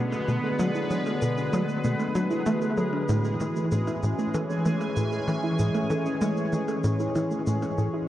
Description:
ambient, sequencer-driven space music; 96 BPM; 4/4; straight; A major; A4 = 440 Hz
sweeping resonant pad; sustained chords; 0.0-8.1 s; D3 to G#5; -29 LUFS; left 1 dB; chorus
soft round pluck; arpeggios; 0.0-8.1 s; E3 to A4; -31 LUFS; right 2 dB; chorus, auto-pan, analog delay
tight sequencer bass; riff; 0.0-7.9 s; A2 to A3; -28 LUFS; equal; ensemble chorus, analog delay
pulsing gated texture; texture; 0.0-8.1 s; G#3 to G#4; -34 LUFS; left 1 dB; chorus, built-in reverb
shaker and percussion blips; percussion; 0.1-7.9 s; -46 LUFS; left 1 dB; analog delay
moderate plate reverb, RT60 3.5 s; worn, warbling old tape, cassette tape, warbly pitch drift; -24 LUFS; side -13 dB against mid
0.0-8.1 A section
0.0 Bm7; 3.1 Amaj7
| 0.59 1.22 1.84 2.47 | 3.09 3.72 4.34 4.97 | 5.59 6.22 6.84 7.47

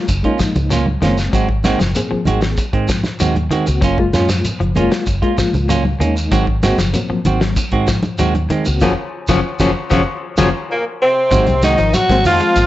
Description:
afrobeat; 96 BPM; 4/4; straight; A4 = 441 Hz
reed electric piano; accompaniment; 0.0-12.6 s; Gb3 to Ab4; -22 LUFS; left 3 dB; tremolo
clean electric guitar; arpeggios; 0.0-12.7 s; Db3 to Ab3; -22 LUFS; left 5 dB; spring reverb
clean electric guitar; stabs; 0.1-12.6 s; Eb3 to Gb4; -21 LUFS; right 5 dB
vintage muted fingered electric bass; bass; 0.1-12.7 s; Gb1 to Ab2; -19 LUFS; equal
cloth-damped thuddy drum kit; drums; 0.1-12.7 s; hi-hat, kick drum, snare drum; -21 LUFS; equal
congas; percussion; 0.1-12.4 s; -23 LUFS; right 1 dB
shekere; percussion; 0.1-12.7 s; -25 LUFS; right 1 dB
raspy tenor saxophone; melody; 10.7-12.7 s; Bb3 to Gb4; -14 LUFS; equal
clear trombone section; second line; 10.7-12.7 s; Bb2 to Gb3; -23 LUFS; left 2 dB
clear trumpet; second line; 10.7-12.7 s; Bb3 to Gb4; -23 LUFS; right 2 dB
light reverb; nothing above 7.9 kHz; -13 LUFS; side -14 dB against mid
0.0-11.3 A section; 11.3-12.7 B section
band accent 8.8-11.3; drum fill 10.5-11.3
0.0 Gbmaj7; 11.3 Ab7
0.08 0.71 | 1.33 1.95 2.58 3.20 | 3.83 4.45 5.08 5.70 | 6.33 6.95 7.58 8.20 | 8.83 9.45 10.07 10.70 | 11.32 11.94 12.57

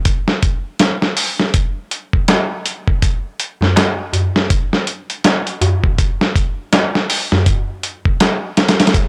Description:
trip hop; 81 BPM; 4/4; swing 60% on 16ths
dusty soul sampler-style drum kit; drums; 0.1-9.1 s; hi-hat, kick drum, snare drum; -17 LUFS; equal; overdrive
darbuka; percussion; 2.3-8.4 s; -21 LUFS; equal
digital ambience; dry, gritty hardware recording, transformer saturation; -17 LUFS; mono
0.0-9.1 A section
0.06 0.80 | 1.54 2.28 3.02 3.76 | 4.50 5.24 5.98 6.72 | 7.46 8.21 8.95

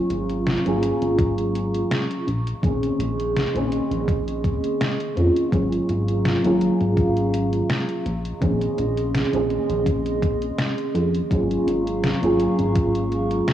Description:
vaporwave; 83 BPM; 4/4; swing 53% on 16ths; Bb minor; A4 = 438 Hz
mellow FM electric piano; accompaniment; 0.0-13.5 s; Eb3 to Ab4; -22 LUFS; equal; ensemble chorus, tape echo
warbly tape-like pad; sustained chords; 0.0-13.5 s; Gb3 to Db6; -29 LUFS; right 4 dB; chorus, built-in reverb
chorused synth bass; bass; 0.1-13.4 s; Ab1 to F2; -25 LUFS; equal
detuned 8-bit digital drum machine; drums; 0.1-13.5 s; hi-hat, snare drum; -27 LUFS; equal; overdrive
electronic kick drum; drums; 1.2-12.9 s; -23 LUFS; equal; overdrive
moderate scoring stage reverb, RT60 1.9 s; worn, warbling old tape, cassette tape, warbly pitch drift, small room ambience; -20 LUFS; side -11 dB against mid
0.0-13.5 A section
0.0 Ab13sus4; 2.3 Bbm11; 5.5 Ab13sus4; 8.1 Bbm11; 11.3 Ab13sus4
0.47 1.19 1.91 | 2.64 3.36 4.08 4.80 | 5.53 6.25 6.97 7.70 | 8.42 9.14 9.87 10.59 | 11.31 12.03 12.76 13.48

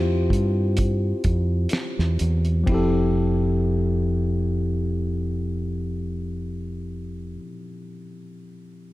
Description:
R&B, neo-soul; 61-67 BPM; 4/4; swing 55% on 16ths; F major; A4 = 440 Hz
tine electric piano; accompaniment; 0.0-8.9 s; F3 to C5; -26 LUFS; left 2 dB; overdrive
deep dub fingered electric bass; bass; 0.0-7.4 s; F1 to G2; -23 LUFS; equal
cloth-damped thuddy drum kit; drums; 0.3-2.9 s; finger snaps, hi-hat, kick drum, ride cymbal, snare drum; -26 LUFS; equal
light reverb, studio reverb; -21 LUFS; side -17 dB against mid
0.0-2.7 A section; 2.7-6.6 B section
slowing down 0.0-2.7
0.0 Fmaj7sus2; 2.7 Fmaj9
0.77 1.71 | 2.67 3.65 4.63 5.61

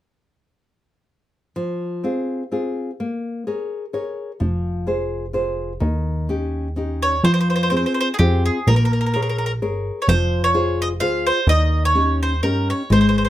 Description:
italian folk, Italian serenade; 127 BPM; 3/4; swing 54% on 8ths; F minor; A4 = 440 Hz
nylon-string guitar; accompaniment; 1.6-13.3 s; Eb3 to Db5; -23 LUFS; left 2 dB
plucky analog bass; bass; 4.4-13.3 s; F1 to G2; -20 LUFS; equal
bowl-back mandolin; melody; 7.0-13.3 s; G4 to F5; -21 LUFS; right 1 dB
light reverb; -18 LUFS; side -13 dB against mid
1.6-7.2 A section; 7.2-13.3 B section
1.6 Fm; 3.0 Bbm7; 4.4 Fm; 5.8 Eb7; 7.2 Fm; 8.7 Bbm7; 10.1 Fm; 11.5 Eb7
| 1.56 2.04 2.52 | 2.99 3.46 3.93 | 4.40 4.87 5.34 | 5.81 6.29 6.77 | 7.25 7.72 8.20 | 8.67 9.14 9.61 | 10.08 10.55 11.01 | 11.48 11.95 12.43 | 12.91

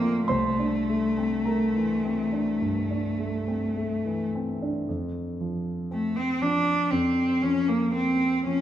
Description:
classical, impressionist duo for cello and grand piano; 51-60 BPM; 4/4; rubato; A4 = 439 Hz
clear cello; melody; 0.0-8.6 s; A3 to D4; -25 LUFS; left 1 dB
warm concert grand piano; accompaniment; 0.0-8.6 s; C2 to D6; -28 LUFS; right 1 dB
wet recital hall reverb, RT60 1.7 s; minimal, uncompressed stereo recording; -24 LUFS; side -11 dB against mid
0.0-4.9 A section; 4.9-8.6 B section
0.3 C13; 4.9 F5; 6.9 Bb5/F
| 0.29 1.45 2.61 3.75 | 4.88 5.92 6.92 7.93

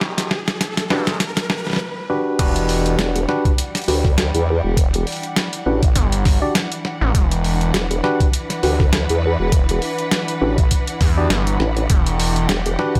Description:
glitch hop; 101 BPM; 4/4; swing 56% on 16ths; E minor; A4 = 440 Hz
dark studio string section; sustained chords; 0.0-13.0 s; E3 to F#5; -30 LUFS; equal; sidechain pumping
gritty driven synth bass; bass; 0.0-12.5 s; E1 to E2; -22 LUFS; equal; tube saturation, high-pass filter
boom bap sampler-style drum kit; drums; 0.0-13.0 s; crash cymbal, hi-hat, snare drum; -25 LUFS; equal; studio reverb
riser; sound effects; 0.0-1.8 s; -31 LUFS; equal
mellow tine electric piano; stabs; 0.9-13.0 s; D4 to D5; -25 LUFS; equal; overdrive, sidechain pumping, tape echo
electronic kick drum; drums; 2.4-13.0 s; -19 LUFS; equal; studio reverb
vowel-sweep wobble bass; bass; 3.0-12.8 s; E1 to E2; -21 LUFS; equal; chorus
little or no reverb; -19 LUFS; mono
0.0-2.4 A section; 2.4-13.0 B section
build-up 0.0-2.4; drum fill 0.0-1.8; riser 0.0-1.8; drop 2.4-13.0
0.0 Em9
| 0.02 0.61 1.21 1.80 | 2.39 2.99 3.58 4.18 | 4.77 5.36 5.96 6.55 | 7.15 7.74 8.33 8.93 | 9.52 10.12 10.71 11.30 | 11.90 12.49

